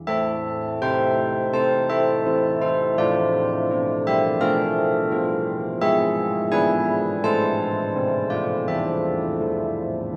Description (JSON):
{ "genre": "classical, tune for church bells", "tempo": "83 BPM", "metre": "4/4", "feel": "straight", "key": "A minor", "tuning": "A4 = 438 Hz", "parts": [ { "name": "carillon bells", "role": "solo", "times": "0.0-10.2 s", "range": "E3 to A5", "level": "-22 LUFS", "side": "equal", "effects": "none" } ], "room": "wet cathedral reverb, RT60 6.9 s", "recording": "heard from further back in the room", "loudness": "-22 LUFS", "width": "mono", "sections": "0.1-10.2 A section", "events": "none", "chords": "0.1 Am; 3.0 Bm7b5/A; 5.8 E7/G#; 7.2 Am; 8.7 Esus4" }